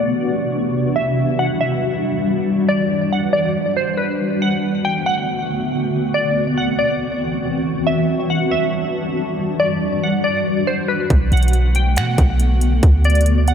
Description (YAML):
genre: hip hop, atmospheric cloud-rap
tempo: 139 BPM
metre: 4/4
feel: half-time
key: E minor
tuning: A4 = 439 Hz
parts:
  - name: glassy wavetable pluck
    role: melody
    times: 0.0-13.5 s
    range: B4 to G5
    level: -21 LUFS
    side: equal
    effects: chorus, low-pass filter, ping-pong delay
  - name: granular cloud pad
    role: sustained chords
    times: 0.0-13.5 s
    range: D2 to F#4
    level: -19 LUFS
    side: left 1 dB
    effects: built-in reverb, ensemble chorus, sidechain pumping, low-pass filter
  - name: clean 808-style bass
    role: bass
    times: 11.1-13.5 s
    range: B1 to B2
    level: -14 LUFS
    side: equal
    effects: none
  - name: trap drum kit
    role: drums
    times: 11.1-13.5 s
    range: finger snaps, hi-hat, kick drum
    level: -17 LUFS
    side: equal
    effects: none
room: wet huge ambient reverb, RT60 4.6 s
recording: dreamy mix soaked in reverb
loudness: -16 LUFS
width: side -8 dB against mid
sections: 0.0-4.2 A section; 4.2-13.5 B section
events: filter sweep 0.0-4.2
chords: 0.0 D13; 0.7 Em9; 4.2 Bm7; 5.9 D13; 7.6 Em9; 11.1 Bm7; 12.8 D13